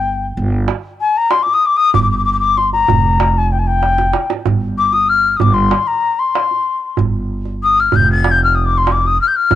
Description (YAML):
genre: Persian modal ensemble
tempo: 95 BPM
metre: 4/4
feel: straight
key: G dastgah shur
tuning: A4 = 440 Hz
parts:
  - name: mellow jazz flute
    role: melody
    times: 0.0-9.6 s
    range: G5 to A6-48c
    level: -13 LUFS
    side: left 5 dB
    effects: cassette tape
  - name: upright bass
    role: bass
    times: 0.0-9.6 s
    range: F1 to G1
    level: -17 LUFS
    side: right 1 dB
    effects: none
  - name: tombak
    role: percussion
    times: 0.7-9.6 s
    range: none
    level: -18 LUFS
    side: right 6 dB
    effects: none
room: small room ambience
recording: home recording on cassette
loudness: -12 LUFS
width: side -12 dB against mid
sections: 0.0-9.6 A section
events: drum fill 3.8-4.5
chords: none